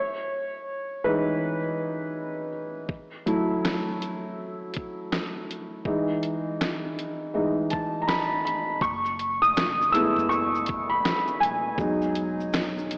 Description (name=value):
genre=lo-fi hip hop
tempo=81 BPM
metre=4/4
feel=swing 63% on 16ths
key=F# dorian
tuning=A4 = 436 Hz
part: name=felt-muted upright piano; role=accompaniment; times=0.0-13.0 s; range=E3 to E6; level=-24 LUFS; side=equal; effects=low-pass filter
part: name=boom bap sampler-style drum kit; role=drums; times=2.9-13.0 s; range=handclaps, hi-hat, kick drum, shaker, snare drum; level=-30 LUFS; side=equal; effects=none
part: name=upright bass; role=bass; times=8.8-13.0 s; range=D#1 to F#1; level=-39 LUFS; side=equal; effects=none
room=wet plate reverb, RT60 2.5 s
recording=dreamy mix soaked in reverb, cassette tape, AM radio sound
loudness=-24 LUFS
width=side -34 dB against mid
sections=0.0-8.8 A section; 8.8-13.0 B section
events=felt piano solo 0.0-8.8, 8.8-13.0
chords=0.0 Emaj7; 2.9 F#m7; 5.9 Emaj7; 8.8 F#m11; 11.8 Emaj7